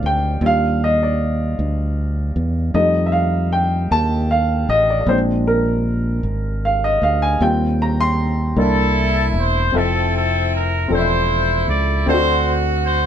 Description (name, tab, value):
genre	slow gospel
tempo	52 BPM (dotted quarters)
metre	6/8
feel	straight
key	Eb major, F major from 9.7 s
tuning	A4 = 438 Hz
part	warm upright piano	accompaniment	0.0-13.1 s	D3 to C6	-20 LUFS	left 1 dB	none
part	fingered electric bass	bass	0.0-13.1 s	E1 to F2	-19 LUFS	equal	none
part	clear horn section	melody	8.6-13.1 s	C4 to D5	-18 LUFS	equal	none
room	moderate small room ambience, RT60 0.5 s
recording	band playing live in one room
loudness	-15 LUFS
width	side -9 dB against mid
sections	0.0-9.7 A section; 9.7-13.1 B section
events	upright piano solo 0.0-9.7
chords	0.4 Ebmaj7; 2.7 F7; 5.1 Bb7; 7.4 Eb6; 8.6 C7; 9.7 Fmaj7; 12.1 D7